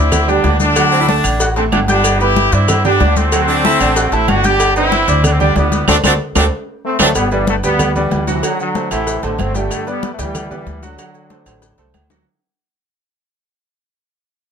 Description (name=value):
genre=latin, salsa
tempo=188 BPM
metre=4/4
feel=straight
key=G major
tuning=A4 = 439 Hz
part: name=bright trumpet section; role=melody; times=0.0-7.1 s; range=G3 to G4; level=-15 LUFS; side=equal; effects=none
part: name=bright upright piano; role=accompaniment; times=0.0-12.2 s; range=F#3 to G6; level=-20 LUFS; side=right 4 dB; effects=none
part: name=upright bass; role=bass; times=0.0-12.2 s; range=G1 to G2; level=-17 LUFS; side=equal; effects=none
part: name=agogo bells and timbales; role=percussion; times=0.1-12.3 s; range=none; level=-24 LUFS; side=right 3 dB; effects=none
part: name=claves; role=percussion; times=0.1-12.1 s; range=none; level=-25 LUFS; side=right 6 dB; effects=none
part: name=congas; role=percussion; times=0.1-12.3 s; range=none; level=-22 LUFS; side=left 3 dB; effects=none
part: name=cowbell and bongos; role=percussion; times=0.1-12.3 s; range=none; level=-25 LUFS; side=left 3 dB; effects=none
part: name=maracas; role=percussion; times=0.1-12.3 s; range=none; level=-26 LUFS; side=left 6 dB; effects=none
part: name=clear saxophone section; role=second line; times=0.9-1.5, 3.5-7.1 s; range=C4 to F#4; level=-18 LUFS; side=right 1 dB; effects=none
part: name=bright trombone section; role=melody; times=6.8-12.0 s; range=B2 to C4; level=-20 LUFS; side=left 1 dB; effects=none
room=light reverb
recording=close, detailed microphones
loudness=-12 LUFS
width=side -7 dB against mid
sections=0.0-7.2 A section; 7.2-12.3 B section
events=drum fill 5.9-7.2, 11.6-12.3; band accent 5.9-7.2; fade-out 7.2-12.3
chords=0.0 G; 0.8 D; 2.0 G; 3.3 D7; 4.6 G; 5.9 D7; 7.2 G; 8.4 D7; 9.7 G; 11.0 D7